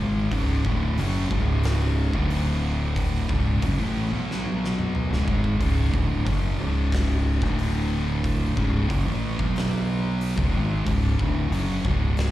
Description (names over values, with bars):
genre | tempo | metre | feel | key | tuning
stoner and doom metal | 91 BPM | 4/4 | straight | unclear | A4 = 441 Hz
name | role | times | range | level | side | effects
thick fuzz guitar | riff | 0.0-12.3 s | C#2 to B3 | -28 LUFS | left 5 dB | distortion
thick fuzz guitar | riff | 0.0-12.3 s | C#2 to B3 | -28 LUFS | right 5 dB | distortion
fuzz fingered electric bass | bass | 0.0-12.3 s | C#1 to B1 | -26 LUFS | equal | overdrive
oversized low-tuned drum kit | drums | 0.3-12.3 s | hi-hat, kick drum, snare drum, toms | -28 LUFS | equal | none
room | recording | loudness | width
light reverb | live gig heard through the venue's PA, recital hall reverb | -21 LUFS | side -14 dB against mid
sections
0.0-12.3 A section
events
drum fill 4.3-5.6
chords
0.0 C#5; 2.1 D5; 3.3 C#m; 4.1 B5; 5.1 C#5; 7.4 D5; 8.6 C#m; 9.4 B5; 10.4 C#5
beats
| 0.32 0.98 1.65 2.31 | 2.97 3.63 4.29 4.95 | 5.61 6.27 6.93 7.58 | 8.24 8.90 9.56 10.22 | 10.87 11.53 12.19